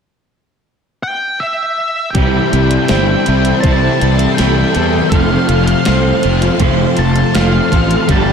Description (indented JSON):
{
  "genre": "rock, shoegaze and dream pop",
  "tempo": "81 BPM",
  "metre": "4/4",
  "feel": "straight",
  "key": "C major",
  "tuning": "A4 = 441 Hz",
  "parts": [
    { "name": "octave-fuzz lead guitar", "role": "melody", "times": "1.0-8.3 s", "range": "E5 to A5", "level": "-20 LUFS", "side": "equal", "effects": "distortion, diffuse ambient delay" },
    { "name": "string machine, violins", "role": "sustained chords", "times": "2.1-8.3 s", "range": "G4 to C6", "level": "-22 LUFS", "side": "right 1 dB", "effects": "ensemble chorus" },
    { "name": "electric guitar through a small old amp", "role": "arpeggios", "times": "2.1-8.3 s", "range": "G4 to C5", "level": "-22 LUFS", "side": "right 2 dB", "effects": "analog chorus, diffuse ambient delay" },
    { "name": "crunchy overdriven guitar", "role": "riff", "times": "2.1-8.3 s", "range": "F2 to G4", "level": "-18 LUFS", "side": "right 11 dB", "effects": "reverse reverb" },
    { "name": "overdriven semi-hollow guitar", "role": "riff", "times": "2.1-8.3 s", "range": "F2 to G4", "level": "-17 LUFS", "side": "left 11 dB", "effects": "ensemble chorus" },
    { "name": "fuzz fingered electric bass", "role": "bass", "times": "2.1-8.3 s", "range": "F1 to E2", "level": "-15 LUFS", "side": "equal", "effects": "overdrive" },
    { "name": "gated 80s digital drum machine", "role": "drums", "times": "2.1-8.3 s", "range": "hi-hat, kick drum, snare drum", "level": "-17 LUFS", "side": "equal", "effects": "gated reverb, gated reverb snare" },
    { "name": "distorted electric guitar", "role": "riff", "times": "8.1-8.3 s", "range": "G2 to G3", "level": "-18 LUFS", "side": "equal", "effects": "overdrive" }
  ],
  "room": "moderate plate reverb, RT60 1.4 s, digital ambience",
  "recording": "dreamy mix soaked in reverb",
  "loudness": "-11 LUFS",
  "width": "side -6 dB against mid",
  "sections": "0.0-2.1 A section; 2.1-8.3 B section",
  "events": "none",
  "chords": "0.0 N.C.; 2.1 C6; 5.1 F"
}